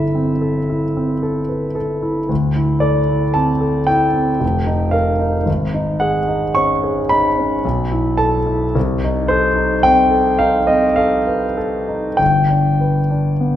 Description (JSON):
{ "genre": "classical, impressionist solo piano", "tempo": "48-57 BPM", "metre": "3/4", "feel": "rubato", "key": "unclear", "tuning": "A4 = 436 Hz", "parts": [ { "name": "warm concert grand piano", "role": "solo", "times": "0.0-13.6 s", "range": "F1 to Db6", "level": "-14 LUFS", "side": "equal", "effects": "none" } ], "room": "wet recital hall reverb, RT60 1.4 s", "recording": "none", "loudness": "-14 LUFS", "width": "side -11 dB against mid", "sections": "0.0-13.6 A section", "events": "none", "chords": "0.0 Am7/G; 2.3 Dsus2; 4.4 F9sus4; 5.5 Absus4; 7.6 B7sus4; 8.8 Cm6; 12.2 G" }